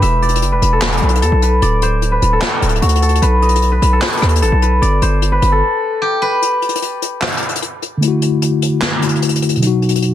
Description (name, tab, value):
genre	hip hop, trap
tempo	150 BPM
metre	4/4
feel	half-time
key	unclear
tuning	A4 = 440 Hz
part	steel-string zither	melody	0.0-8.4 s	F#4 to E5	-16 LUFS	left 1 dB	low-pass filter, ping-pong delay
part	distorted 808-style bass	bass	0.0-5.6 s	D1 to E2	-14 LUFS	equal	distortion
part	jazz brush drum kit	drums	0.0-10.1 s	handclaps, hi-hat, rim click, snare drum	-19 LUFS	left 2 dB	none
part	mellow tine electric piano	accompaniment	8.0-10.1 s	B2 to F#4	-14 LUFS	left 2 dB	medium stereo tremolo, low-pass filter
room	small room ambience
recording	dense, heavily limited modern master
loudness	-12 LUFS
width	side -11 dB against mid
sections	0.0-10.1 A section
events	filter sweep 0.0-6.4; break 5.6-6.4, 6.4-10.1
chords	0.0 E5; 1.6 D5; 3.2 B; 4.8 Gadd9; 6.4 N.C.; 8.0 Dadd9; 9.6 B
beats	| 0.02 0.42 0.82 1.22 | 1.62 2.02 2.42 2.82 | 3.22 3.62 4.02 4.42 | 4.82 5.22 5.62 6.02 | 6.42 6.82 7.22 7.62 | 8.02 8.42 8.82 9.22 | 9.62 10.02